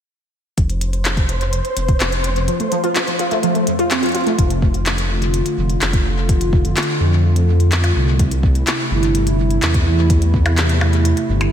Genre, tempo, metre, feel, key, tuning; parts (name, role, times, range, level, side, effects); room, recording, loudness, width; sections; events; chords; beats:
IDM; 126 BPM; 4/4; straight; F major; A4 = 440 Hz
dark detuned saw bass; bass; 0.6-11.5 s; F1 to F2; -17 LUFS; equal
electronic kick drum; drums; 0.6-10.4 s; -17 LUFS; equal
glitchy drum kit; drums; 0.6-11.5 s; handclaps, hi-hat, percussion blips; -22 LUFS; left 1 dB; ping-pong delay, slapback echo
flickering grainy texture; texture; 0.9-4.4 s; C5; -25 LUFS; left 1 dB; built-in reverb
warbly dusty pluck; arpeggios; 2.5-4.4 s; F2 to F4; -18 LUFS; equal; phaser, ensemble chorus, tape echo, slapback echo
hollow soft pad; sustained chords; 4.4-11.5 s; C3 to F4; -21 LUFS; right 1 dB; chorus
light reverb; -14 LUFS; side -9 dB against mid
0.6-4.4 A section; 4.4-11.5 B section
0.6 F5; 4.4 F6; 8.2 C6
| 0.58 1.05 1.53 2.00 | 2.48 2.96 3.43 3.91 | 4.39 4.86 5.34 5.81 | 6.29 6.77 7.24 7.72 | 8.20 8.67 9.15 9.62 | 10.10 10.58 11.05